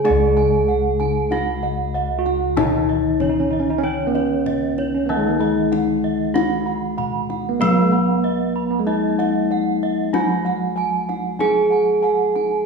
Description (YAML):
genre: Javanese gamelan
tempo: 48 BPM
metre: 4/4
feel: straight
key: Db slendro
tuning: A4 = 440 Hz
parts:
  - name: gamelan-type bronze metallophone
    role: melody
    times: 0.0-12.7 s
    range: Db4 to Cb5-45c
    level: -21 LUFS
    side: equal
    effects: none
  - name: gamelan-type bronze metallophone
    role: accompaniment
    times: 0.0-12.7 s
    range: Eb3+30c to Cb4-45c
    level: -27 LUFS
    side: left 1 dB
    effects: none
  - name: gamelan-type bronze metallophone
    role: arpeggios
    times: 0.0-12.6 s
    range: Db5 to Cb6-45c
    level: -27 LUFS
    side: right 7 dB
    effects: none
  - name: gamelan-type bossed gongs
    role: bass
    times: 0.0-12.7 s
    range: Db2 to Ab4+25c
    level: -25 LUFS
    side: left 2 dB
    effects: none
  - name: gamelan-type bossed gongs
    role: arpeggios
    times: 0.1-12.4 s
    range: Db5 to Cb6-45c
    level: -28 LUFS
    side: right 3 dB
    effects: none
  - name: kendang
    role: percussion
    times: 0.1-12.5 s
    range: none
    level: -28 LUFS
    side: left 4 dB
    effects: none
  - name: tine electric piano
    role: second line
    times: 2.2-12.7 s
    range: Gb3-35c to Gb4-35c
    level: -23 LUFS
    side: right 3 dB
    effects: medium stereo tremolo
room: wet scoring stage reverb, RT60 1.5 s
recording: recorded in a church or concert hall, small room ambience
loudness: -17 LUFS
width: side -4 dB against mid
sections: 0.1-12.7 A section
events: none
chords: none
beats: | 0.05 1.31 2.57 3.83 | 5.10 6.36 7.62 8.88 | 10.14 11.40